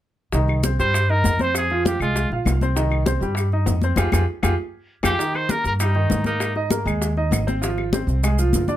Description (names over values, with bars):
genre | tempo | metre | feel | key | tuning
latin, salsa | 198 BPM | 4/4 | straight | C minor | A4 = 440 Hz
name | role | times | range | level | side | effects
clear grand piano | accompaniment | 0.3-8.8 s | Eb3 to F5 | -25 LUFS | right 1 dB | none
upright bass | bass | 0.3-8.8 s | G1 to Ab2 | -21 LUFS | equal | none
bongos | percussion | 0.3-8.8 s | none | -30 LUFS | left 4 dB | none
congas | percussion | 0.3-8.8 s | none | -26 LUFS | left 4 dB | none
maracas | percussion | 0.3-8.8 s | none | -33 LUFS | right 4 dB | none
claves | percussion | 0.5-8.4 s | none | -31 LUFS | left 4 dB | none
clear trumpet | melody | 0.8-2.3, 5.0-6.5 s | Eb4 to C5 | -23 LUFS | equal | none
room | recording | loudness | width
light reverb | close, detailed microphones | -18 LUFS | side -12 dB against mid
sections
0.3-5.2 A section; 5.2-8.8 B section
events
band accent 4.0-5.2; drum fill 4.7-5.2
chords
0.3 Cm; 1.5 Fm; 2.8 Cm; 4.0 Fmadd9; 5.2 Abmaj7sus2; 6.4 Abadd9; 7.6 Fmadd9/Ab